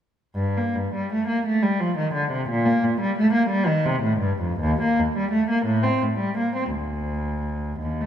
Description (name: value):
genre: classical, baroque-style suite movement for unaccompanied cello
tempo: 57 BPM (dotted quarters)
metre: 6/8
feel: uneven beats, rubato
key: G minor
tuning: A4 = 440 Hz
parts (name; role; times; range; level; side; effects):
- warm cello; solo; 0.3-8.1 s; D2 to C4; -21 LUFS; equal; none
room: moderate concert hall reverb, RT60 1.8 s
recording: none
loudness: -21 LUFS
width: side -9 dB against mid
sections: 0.4-8.1 A section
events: none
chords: none